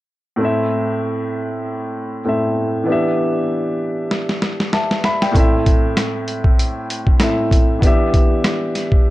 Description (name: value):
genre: hip hop, boom-bap hip-hop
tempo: 97 BPM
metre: 4/4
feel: swing 58% on 16ths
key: A minor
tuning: A4 = 442 Hz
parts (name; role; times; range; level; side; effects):
- warm upright piano; accompaniment; 0.4-9.1 s; A2 to B5; -18 LUFS; equal; cassette tape, high-pass filter, low-pass filter
- boom bap sampler-style drum kit; drums; 4.1-9.0 s; hi-hat, kick drum, rim click, snare drum; -15 LUFS; equal; none
room: light reverb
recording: dark, warm production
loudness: -15 LUFS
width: side -17 dB against mid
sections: 0.4-9.1 A section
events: drum fill 4.1-5.3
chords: 0.4 Am; 2.9 Em7; 5.3 Am; 7.8 Em7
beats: | 0.40 1.02 1.64 2.26 | 2.88 3.49 4.11 4.73 | 5.35 5.97 6.59 7.21 | 7.82 8.44 9.06